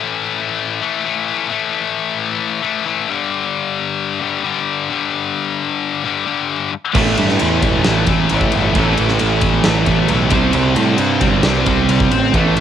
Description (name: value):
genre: hard rock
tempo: 133 BPM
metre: 4/4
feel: straight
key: A minor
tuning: A4 = 437 Hz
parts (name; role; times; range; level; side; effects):
- scooped high-gain guitar; riff; 0.0-12.6 s; G2 to C4; -18 LUFS; left 9 dB; distortion, cassette tape
- distorted electric guitar; riff; 6.9-12.6 s; A2 to C4; -20 LUFS; left 1 dB; overdrive, cassette tape
- overdriven semi-hollow guitar; riff; 6.9-12.6 s; A2 to C4; -19 LUFS; right 9 dB; cassette tape
- huge arena drum kit; drums; 6.9-12.6 s; crash cymbal, kick drum, ride cymbal, snare drum; -19 LUFS; equal; none
- fuzz picked electric bass; bass; 7.0-12.6 s; E1 to A2; -18 LUFS; equal; overdrive
room: little or no reverb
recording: home recording on cassette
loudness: -14 LUFS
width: side -9 dB against mid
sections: 0.0-12.6 A section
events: none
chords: 0.0 A5; 3.1 G5; 6.9 A5; 10.3 C5